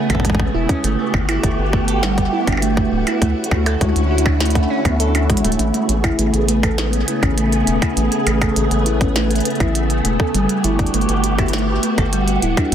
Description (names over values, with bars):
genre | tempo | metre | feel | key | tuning
IDM | 101 BPM | 4/4 | straight | A major | A4 = 440 Hz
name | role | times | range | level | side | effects
soft string machine | sustained chords | 0.0-12.7 s | C#3 to G#4 | -21 LUFS | left 1 dB | phaser, ensemble chorus
harp-like synth pluck | arpeggios | 0.0-12.7 s | G3 to A4 | -21 LUFS | right 3 dB | chorus, cassette tape, digital delay
rubbery square bass | bass | 0.1-12.7 s | D1 to D2 | -20 LUFS | equal | none
electronic kick drum | drums | 0.1-12.7 s | none | -19 LUFS | equal | overdrive
glitchy drum kit | drums | 0.1-12.7 s | hi-hat, percussion blips, snare drum | -24 LUFS | right 2 dB | overdrive, digital delay
room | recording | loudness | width
light reverb | dense, heavily limited modern master | -15 LUFS | side -9 dB against mid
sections
0.0-5.6 A section; 5.6-12.7 A section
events
drum fill 5.3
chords
0.0 Amaj9; 0.8 Gmaj9; 3.2 Dmaj9; 5.6 Amaj9; 10.3 Gmaj9